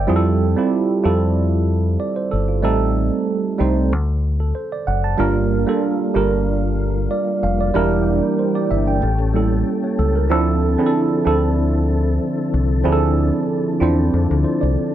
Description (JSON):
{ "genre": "R&B, neo-soul", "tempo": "94 BPM", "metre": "4/4", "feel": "swing 54% on 16ths", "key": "D minor", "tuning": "A4 = 439 Hz", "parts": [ { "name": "tine electric piano", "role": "accompaniment", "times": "0.0-14.9 s", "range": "F3 to A5", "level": "-19 LUFS", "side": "right 4 dB", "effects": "phaser" }, { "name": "deep dub fingered electric bass", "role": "bass", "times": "0.0-14.8 s", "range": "E1 to F2", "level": "-19 LUFS", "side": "left 1 dB", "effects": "none" }, { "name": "mellow tonewheel organ", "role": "sustained chords", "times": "5.2-14.9 s", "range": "D3 to A4", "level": "-25 LUFS", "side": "left 7 dB", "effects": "slow rotary speaker, chorus vibrato" } ], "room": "digital ambience", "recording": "dry, close 1970s-style studio recording", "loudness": "-16 LUFS", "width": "side -11 dB against mid", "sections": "0.0-14.9 A section", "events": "none", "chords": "0.1 Fmaj9; 2.6 Am7b5; 3.9 D; 5.2 Gm7; 7.7 Em7b5; 9.0 A7b9; 10.3 Dm9", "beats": "| 0.08 0.72 1.36 2.00 | 2.63 3.27 3.91 4.55 | 5.19 5.83 6.46 7.10 | 7.74 8.38 9.02 9.65 | 10.29 10.93 11.57 12.21 | 12.85 13.48 14.12 14.76" }